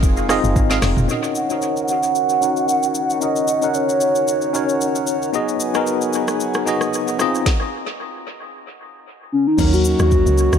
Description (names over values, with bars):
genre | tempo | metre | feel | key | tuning
amapiano | 113 BPM | 4/4 | swing 55% on 16ths | Eb minor | A4 = 439 Hz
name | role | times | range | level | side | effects
bell-like tine electric piano | accompaniment | 0.0-10.6 s | Gb3 to Gb5 | -21 LUFS | left 2 dB | medium stereo tremolo, low-pass filter, dub echo
pedal harmonium | sustained chords | 0.0-10.6 s | Eb3 to Ab4 | -27 LUFS | right 4 dB | low-pass filter
deep log drum bass | bass | 0.0-1.1, 9.6-10.6 s | F1 to Eb2 | -18 LUFS | equal | none
afro-pop drum kit | drums | 0.0-10.6 s | crash cymbal, hi-hat, kick drum, rim click, shaker, snare drum, toms | -23 LUFS | equal | dub echo
percussive organ stab | stabs | 0.3-0.8 s | Ab4 to F5 | -29 LUFS | right 4 dB | chorus, dub echo
hollow clarinet-like synth lead | melody | 1.4-5.1, 9.3-10.6 s | Db4 to Gb5 | -20 LUFS | right 1 dB | chorus, low-pass filter, dub echo
room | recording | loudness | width
light reverb, digital ambience | echo-heavy mix | -16 LUFS | side -8 dB against mid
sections
0.0-1.1 A section; 1.1-9.6 B section; 9.6-10.6 C section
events
drop 0.0-1.1; filter sweep 1.1-9.6; stop 7.5-9.6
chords
0.0 Fm7; 1.1 Ebm7; 5.3 Abm7; 7.2 Fm7; 9.6 Ebm7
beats
0.03 0.56 | 1.09 1.62 2.15 2.68 | 3.21 3.75 4.28 4.81 | 5.34 5.87 6.40 6.93 | 7.46 7.99 8.52 9.05 | 9.59 10.12